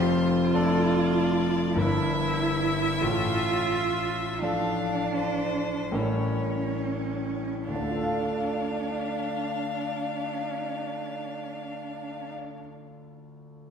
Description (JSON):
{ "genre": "classical, slow romantic movement for piano trio", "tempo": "33-53 BPM", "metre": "3/4", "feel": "rubato", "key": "D minor", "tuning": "A4 = 440 Hz", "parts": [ { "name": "clear violin", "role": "melody", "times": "0.0-12.3 s", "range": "C5 to F5", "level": "-33 LUFS", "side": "left 6 dB", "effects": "none" }, { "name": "rich cello", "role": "second line", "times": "0.0-12.3 s", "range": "C#4 to F4", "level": "-30 LUFS", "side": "right 4 dB", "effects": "none" }, { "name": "warm grand piano", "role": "accompaniment", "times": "0.0-13.7 s", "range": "F1 to F5", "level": "-28 LUFS", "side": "left 1 dB", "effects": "none" } ], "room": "wet concert hall reverb, RT60 2.0 s", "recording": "heard from further back in the room", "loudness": "-25 LUFS", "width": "side -7 dB against mid", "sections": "0.0-7.7 A section; 7.7-12.9 B section", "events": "slowing down 0.0-7.7", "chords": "0.0 Dm/F; 1.8 Edim/G; 3.0 Dm/A; 5.9 A7b9; 7.7 Dm" }